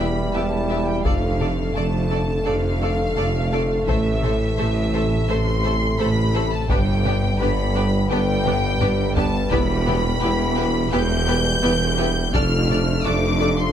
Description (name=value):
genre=cinematic, hybrid orchestral and electronic film score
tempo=85 BPM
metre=4/4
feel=straight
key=A minor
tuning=A4 = 439 Hz
part: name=rich symphonic violin section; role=melody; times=0.0-13.7 s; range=E5 to G6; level=-27 LUFS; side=left 2 dB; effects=none
part: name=warm symphonic violin section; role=second line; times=0.0-13.5 s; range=G4 to E5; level=-30 LUFS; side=left 2 dB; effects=none
part: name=warm symphonic viola section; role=accompaniment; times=0.0-13.5 s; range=A3 to A4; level=-30 LUFS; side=right 1 dB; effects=none
part: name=bright trombone section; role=sustained chords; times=0.0-13.7 s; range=D3 to A3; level=-28 LUFS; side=right 3 dB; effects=none
part: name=dark French horn section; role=sustained chords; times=0.0-13.7 s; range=C3 to B4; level=-28 LUFS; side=left 5 dB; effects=none
part: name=clear symphonic double bass section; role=bass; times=0.0-13.7 s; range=E1 to A1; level=-26 LUFS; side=right 2 dB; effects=none
part: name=rich symphonic cello section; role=bass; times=0.0-13.7 s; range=E2 to A2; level=-26 LUFS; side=right 1 dB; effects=none
part: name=saturated sub bass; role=bass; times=0.0-13.7 s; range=E1 to A1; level=-29 LUFS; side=left 1 dB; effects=none
part: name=warm tuba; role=bass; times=0.0-13.7 s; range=E1 to A1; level=-27 LUFS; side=right 4 dB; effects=none
part: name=impact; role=sound effects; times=0.0-1.1 s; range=none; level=barely audible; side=none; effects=none
part: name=taiko ensemble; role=drums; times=1.0-13.0 s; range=none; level=-25 LUFS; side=left 1 dB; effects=none
room=light reverb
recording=close, detailed microphones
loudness=-18 LUFS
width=side -9 dB against mid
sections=0.0-13.7 A section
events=impact 0.0-1.1; drum fill 8.5-9.5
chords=0.0 Em; 1.1 Dm/F; 3.9 Am; 6.7 G; 9.5 Em; 12.3 Dm/F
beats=0.34 | 1.05 1.76 2.46 3.17 | 3.87 4.58 5.29 5.99 | 6.70 7.40 8.11 8.81 | 9.52 10.23 10.93 11.64 | 12.34 13.05